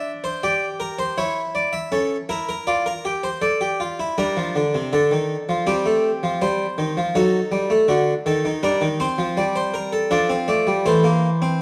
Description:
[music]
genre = classical, baroque-style 3-part fugue for harpsichord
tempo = 81 BPM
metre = 4/4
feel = straight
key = G minor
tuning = A4 = 439 Hz
[part]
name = harpsichord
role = solo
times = 0.0-11.6 s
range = C3 to E5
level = -21 LUFS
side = equal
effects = none
[sound]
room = moderate recital hall reverb, RT60 1.5 s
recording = dark, warm production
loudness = -21 LUFS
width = mono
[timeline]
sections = 0.0-4.2 A section; 4.2-11.6 B section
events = none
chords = 0.0 Em7b5/D; 1.2 C#m6; 2.7 Dm/F; 4.2 Gm; 5.7 Am7b5; 7.2 D#dim; 8.6 Gm; 10.1 Dm/F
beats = 0.42 | 1.17 1.91 2.67 3.42 | 4.17 4.93 5.68 6.42 | 7.16 7.89 8.64 9.38 | 10.12 10.86

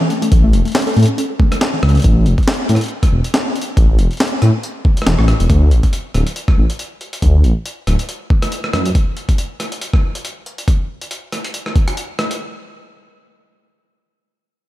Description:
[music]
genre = IDM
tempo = 139 BPM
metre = 4/4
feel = swing 56% on 16ths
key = unclear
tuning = A4 = 442 Hz
[part]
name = warbly dusty pluck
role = arpeggios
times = 0.0-2.0 s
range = E3 to A4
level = -20 LUFS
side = left 1 dB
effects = chorus, cassette tape, ping-pong delay
[part]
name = jungle sampler-style drum kit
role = drums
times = 0.1-12.4 s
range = hi-hat, rim click, snare drum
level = -21 LUFS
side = equal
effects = overdrive, analog delay
[part]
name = dark detuned saw bass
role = bass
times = 0.3-8.9 s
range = D1 to A2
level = -12 LUFS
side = equal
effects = none
[part]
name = electronic kick drum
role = drums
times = 0.3-11.9 s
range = none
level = -14 LUFS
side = equal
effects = overdrive
[sound]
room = light reverb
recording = none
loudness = -13 LUFS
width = side -15 dB against mid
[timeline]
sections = 0.0-12.4 A section; 12.4-14.7 B section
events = filter sweep on synth arpeggio sound 0.0-2.0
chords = 0.0 A5; 5.5 D5; 8.9 N.C.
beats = | 0.32 0.75 1.18 1.61 | 2.04 2.48 2.91 3.34 | 3.77 4.20 4.63 5.07 | 5.50 5.93 6.36 6.79 | 7.22 7.66 8.09 8.52 | 8.95 9.38 9.81 10.24 | 10.68 11.11 11.54 11.97

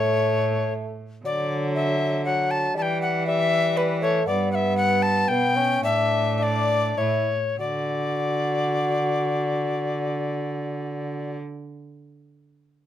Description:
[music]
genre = classical, renaissance-style consort dance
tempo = 96-120 BPM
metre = 3/4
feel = straight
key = D major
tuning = A4 = 439 Hz
[part]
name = alto recorder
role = melody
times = 0.0-11.4 s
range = B4 to A5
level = -24 LUFS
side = left 4 dB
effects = none
[part]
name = mellow bassoon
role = accompaniment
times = 0.0-11.4 s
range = F#3 to F#4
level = -27 LUFS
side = equal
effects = none
[part]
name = rich cello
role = bass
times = 0.0-11.4 s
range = G2 to E3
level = -28 LUFS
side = right 3 dB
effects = none
[sound]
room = light reverb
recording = none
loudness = -21 LUFS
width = side -11 dB against mid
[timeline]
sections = 0.0-7.6 A section; 7.6-11.3 B section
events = slowing down 3.5-7.6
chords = 0.0 A; 1.2 D; 2.8 Em; 4.3 G; 5.8 Asus4; 7.0 A; 7.6 D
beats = 0.23 0.74 | 1.25 1.75 2.26 | 2.76 3.26 3.77 | 4.27 4.78 5.30 | 5.84 6.40 6.98 | 7.59 8.21 8.83 | 9.45 10.07 10.69

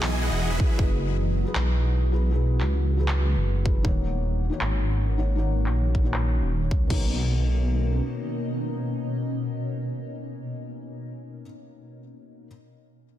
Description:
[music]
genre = future bass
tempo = 157 BPM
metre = 4/4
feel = half-time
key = B major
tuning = A4 = 440 Hz
[part]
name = felt-muted upright piano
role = accompaniment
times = 0.0-12.5 s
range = B2 to C#5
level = -34 LUFS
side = left 3 dB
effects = sidechain pumping, ping-pong delay
[part]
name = shimmering ambient pad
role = sustained chords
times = 0.0-10.7 s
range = B2 to D#5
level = -33 LUFS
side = left 1 dB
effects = chorus, built-in reverb, phaser, sidechain pumping
[part]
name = supersaw chords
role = riff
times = 0.0-0.8 s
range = E3 to G#5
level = -32 LUFS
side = equal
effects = sidechain pumping, ping-pong delay
[part]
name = wide detuned saw bass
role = bass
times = 0.0-8.0 s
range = D#1 to C#2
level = -23 LUFS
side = equal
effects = chorus, sidechain pumping
[part]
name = trap drum kit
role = drums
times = 0.0-7.0 s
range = crash cymbal, handclaps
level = -33 LUFS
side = equal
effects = low-pass filter on hats, low-pass filter on snare, low-pass filter on cymbals
[part]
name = electronic kick drum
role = drums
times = 0.6-0.9, 3.7-7.0 s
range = none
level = -23 LUFS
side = equal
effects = none
[sound]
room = digital ambience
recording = dense, heavily limited modern master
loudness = -22 LUFS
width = side -12 dB against mid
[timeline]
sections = 0.0-6.9 A section; 6.9-10.0 B section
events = filter sweep on drum 0.0-6.9; filter sweep on detuned saw bass 0.0-6.9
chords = 0.0 Emaj9; 0.6 F#9sus4; 3.8 D#m7; 6.9 Bmaj9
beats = 0.03 0.41 | 0.79 1.17 1.55 1.94 | 2.32 2.70 3.08 3.46 | 3.85 4.23 4.61 4.99 | 5.38 5.76 6.14 6.52 | 6.90 7.29 7.67 8.05 | 8.43 8.81 9.20 9.58

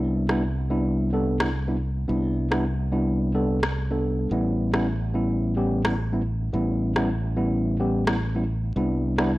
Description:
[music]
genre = nu-disco, nu disco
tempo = 108 BPM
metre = 4/4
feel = straight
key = unclear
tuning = A4 = 440 Hz
[part]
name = tine electric piano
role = accompaniment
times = 0.0-9.3 s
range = G3 to A4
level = -25 LUFS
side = equal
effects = analog delay
[part]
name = modern bright fingered electric bass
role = bass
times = 0.0-9.4 s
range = A1 to C2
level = -26 LUFS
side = equal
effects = none
[part]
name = electronic rim click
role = drums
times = 0.3-9.3 s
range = none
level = -28 LUFS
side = equal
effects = none
[sound]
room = light reverb, digital ambience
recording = dry, gritty hardware recording, cassette tape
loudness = -22 LUFS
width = side -18 dB against mid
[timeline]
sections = 0.0-9.4 A section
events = none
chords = 0.0 Cmaj7; 4.3 A7; 8.8 Cmaj7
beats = 0.43 0.98 1.54 | 2.09 2.65 3.20 3.76 | 4.32 4.87 5.43 5.98 | 6.54 7.09 7.65 8.20 | 8.76 9.31

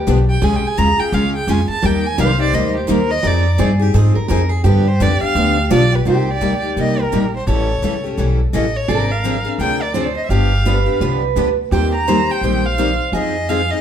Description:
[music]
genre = acoustic string swing (jazz manouche)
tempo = 170 BPM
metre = 4/4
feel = swing 61% on 8ths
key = C minor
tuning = A4 = 440 Hz
[part]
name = warm violin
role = melody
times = 0.0-13.8 s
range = G4 to Bb5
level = -21 LUFS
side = right 2 dB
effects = plate reverb
[part]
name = picked steel-string acoustic guitar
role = second line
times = 0.0-13.8 s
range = F4 to C5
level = -22 LUFS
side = right 3 dB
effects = none
[part]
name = upright bass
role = bass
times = 0.0-13.7 s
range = G1 to Ab2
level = -18 LUFS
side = equal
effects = none
[part]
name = picked steel-string acoustic guitar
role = accompaniment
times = 0.1-13.8 s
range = C3 to C5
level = -22 LUFS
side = left 6 dB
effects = none
[part]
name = picked steel-string acoustic guitar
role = accompaniment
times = 0.1-13.6 s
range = C3 to C5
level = -24 LUFS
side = right 3 dB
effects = none
[sound]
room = wet studio reverb, RT60 0.7 s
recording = heard from further back in the room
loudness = -14 LUFS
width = side -9 dB against mid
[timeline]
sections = 0.0-6.1 A section; 6.1-13.8 B section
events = violin solo 0.0-6.1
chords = 0.4 Db; 1.8 Eb; 3.2 Fm7; 4.7 G7; 6.1 Cm7; 7.5 A7; 8.9 Dm7b5/Ab; 10.3 G7; 11.7 Eb6; 13.1 Fm7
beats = 0.07 | 0.42 0.77 1.12 1.48 | 1.83 2.18 2.54 2.89 | 3.24 3.59 3.94 4.30 | 4.65 5.00 5.36 5.71 | 6.06 6.41 6.77 7.12 | 7.47 7.83 8.18 8.53 | 8.89 9.24 9.60 9.95 | 10.30 10.66 11.01 11.36 | 11.72 12.07 12.42 12.78 | 13.13 13.48

